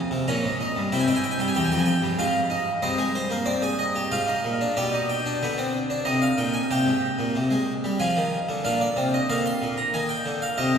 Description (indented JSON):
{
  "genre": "classical, baroque-style 3-part fugue for harpsichord",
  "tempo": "93 BPM",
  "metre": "3/4",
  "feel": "straight",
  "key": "unclear",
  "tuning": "A4 = 439 Hz",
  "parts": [
    { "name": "harpsichord", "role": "solo", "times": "0.0-10.8 s", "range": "E2 to C6", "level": "-22 LUFS", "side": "equal", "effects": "none" }
  ],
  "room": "wet church reverb, RT60 3.2 s",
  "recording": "recorded in a church or concert hall",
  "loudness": "-22 LUFS",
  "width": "side -7 dB against mid",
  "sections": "0.0-6.7 A section; 6.7-10.8 B section",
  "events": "none",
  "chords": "0.3 Gdim; 0.9 C; 2.2 Fm/Ab; 2.8 Cm/G; 4.1 Ddim/Ab; 4.8 G/B; 6.1 Cm; 6.7 C5; 8.0 Fm; 8.7 Bb; 9.9 Eb"
}